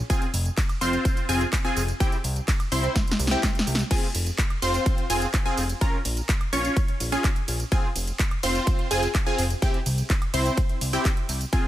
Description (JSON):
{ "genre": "EDM, festival progressive house", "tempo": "126 BPM", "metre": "4/4", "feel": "straight", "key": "F harmonic minor", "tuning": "A4 = 440 Hz", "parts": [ { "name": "fat analog bass", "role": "bass", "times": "0.0-11.5 s", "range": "F1 to C2", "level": "-27 LUFS", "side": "equal", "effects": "sidechain pumping" }, { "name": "wide unison pluck", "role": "arpeggios", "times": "0.1-11.7 s", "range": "G5 to Db6", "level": "-32 LUFS", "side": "left 1 dB", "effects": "sidechain pumping, tape echo" }, { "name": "supersaw stab", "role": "riff", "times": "0.1-11.7 s", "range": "C4 to Db5", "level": "-28 LUFS", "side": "equal", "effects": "phaser, sidechain pumping, tape echo" }, { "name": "big-room dance drum kit", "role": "drums", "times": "0.1-11.6 s", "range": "crash cymbal, handclaps, hi-hat, ride cymbal, snare drum, tambourine, woodblock", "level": "-30 LUFS", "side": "equal", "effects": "none" }, { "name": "electronic kick drum", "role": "drums", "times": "0.1-11.6 s", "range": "none", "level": "-24 LUFS", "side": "equal", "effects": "none" } ], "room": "little or no reverb", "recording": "none", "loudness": "-22 LUFS", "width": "side -14 dB against mid", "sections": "0.0-3.9 A section; 3.9-11.7 A section", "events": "drop 0.0-3.9, 3.9-11.7; drum fill 3.0-3.9", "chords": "0.1 Fm; 2.0 C; 3.9 Fm; 5.8 Bbm; 7.7 Fm; 9.6 C" }